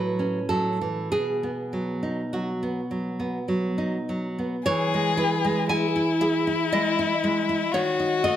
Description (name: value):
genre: romantic duo for violin and classical guitar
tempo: 48-60 BPM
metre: 3/4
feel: rubato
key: E major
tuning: A4 = 439 Hz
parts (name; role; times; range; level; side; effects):
- nylon-string guitar; accompaniment; 0.0-8.4 s; A2 to G#5; -24 LUFS; right 1 dB; none
- warm violin; melody; 4.7-8.4 s; E4 to G#4; -24 LUFS; left 5 dB; none
room: moderate recital hall reverb, RT60 1.7 s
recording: none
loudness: -23 LUFS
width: side -11 dB against mid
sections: 0.0-4.7 A section; 4.7-8.4 B section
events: none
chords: 0.0 F#m7/A; 1.1 B; 4.7 E; 7.7 B7/D# (rootless)